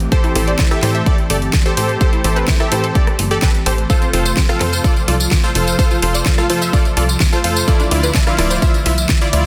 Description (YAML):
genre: progressive house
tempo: 127 BPM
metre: 4/4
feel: straight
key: A minor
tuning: A4 = 437 Hz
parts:
  - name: airy breathy pad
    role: sustained chords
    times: 0.0-9.5 s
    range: C3 to E5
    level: -27 LUFS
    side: equal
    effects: chorus, sidechain pumping
  - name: unison pluck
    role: arpeggios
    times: 0.0-9.5 s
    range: C4 to E5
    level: -28 LUFS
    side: equal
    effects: analog chorus, sidechain pumping, dub echo
  - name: plucky analog bass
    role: bass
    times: 0.0-9.5 s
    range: D1 to A2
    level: -21 LUFS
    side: equal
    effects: sidechain pumping
  - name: pop drum kit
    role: drums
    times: 0.0-9.4 s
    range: hi-hat, rim click, snare drum, tambourine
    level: -23 LUFS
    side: equal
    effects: none
  - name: supersaw stab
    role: stabs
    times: 0.1-9.5 s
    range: E4 to F5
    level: -22 LUFS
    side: equal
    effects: sidechain pumping, dub echo
  - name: electronic kick drum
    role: drums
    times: 0.1-9.2 s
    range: none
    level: -17 LUFS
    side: equal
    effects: none
room: light reverb, digital ambience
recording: dense, heavily limited modern master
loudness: -15 LUFS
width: mono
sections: 0.0-9.5 A section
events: none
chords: 0.0 Am7; 3.9 F; 7.7 Dmadd9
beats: | 0.12 0.59 1.06 1.54 | 2.01 2.48 2.95 3.43 | 3.90 4.37 4.84 5.32 | 5.79 6.26 6.73 7.21 | 7.68 8.15 8.62 9.10